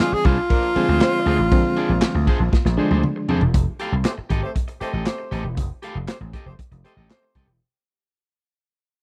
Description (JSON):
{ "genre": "funk", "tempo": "118 BPM", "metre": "4/4", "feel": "straight", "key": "unclear", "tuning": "A4 = 440 Hz", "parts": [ { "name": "breathy tenor saxophone", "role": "melody", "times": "0.0-3.0 s", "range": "F4 to Ab4", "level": "-24 LUFS", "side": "equal", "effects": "none" }, { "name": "mellow horn section", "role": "second line", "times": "0.0-7.5 s", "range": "F3 to C5", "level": "-31 LUFS", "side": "equal", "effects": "none" }, { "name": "electric guitar at the edge of break-up", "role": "accompaniment", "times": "0.0-7.5 s", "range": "D4 to F5", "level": "-32 LUFS", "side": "equal", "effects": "none" }, { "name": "barky reed electric piano", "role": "stabs", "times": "0.0-3.3 s", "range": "D3 to D4", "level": "-27 LUFS", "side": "equal", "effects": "fast tremolo" }, { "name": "crunchy breakbeat drum kit", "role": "drums", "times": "0.0-7.5 s", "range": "handclaps, hi-hat, kick drum, ride cymbal, snare drum, toms", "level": "-24 LUFS", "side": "equal", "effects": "none" }, { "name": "vintage slap bass", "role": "bass", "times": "0.1-7.6 s", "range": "E1 to F2", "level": "-24 LUFS", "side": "equal", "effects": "none" } ], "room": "small room ambience", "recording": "dry, close 1970s-style studio recording", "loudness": "-20 LUFS", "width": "mono", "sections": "0.0-3.5 A section; 3.5-7.6 B section", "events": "drum fill 2.5-3.5; break 3.5-7.6; fade-out 3.5-7.6", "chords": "0.0 Bb9; 3.5 F9" }